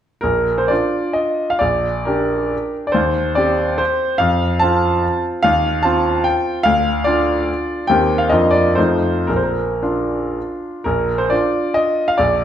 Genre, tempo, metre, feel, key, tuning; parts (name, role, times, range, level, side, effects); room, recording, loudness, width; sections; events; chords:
classical, romantic triple-time dance for piano with dotted rhythms; 104-156 BPM; 3/4; rubato; Bb major; A4 = 440 Hz
bright grand piano; solo; 0.2-12.4 s; Bb1 to A5; -15 LUFS; equal
wet recital hall reverb, RT60 1.3 s; minimal, uncompressed stereo recording; -15 LUFS; side -10 dB against mid
0.2-10.9 A section; 10.9-12.4 A section
0.2 Bb; 1.6 Gm/Bb; 2.9 Cm/Eb; 4.2 F; 5.4 F7/Eb; 6.7 Dm; 7.9 Cm7/Eb; 8.3 Bb/F; 8.8 F7; 9.3 Bb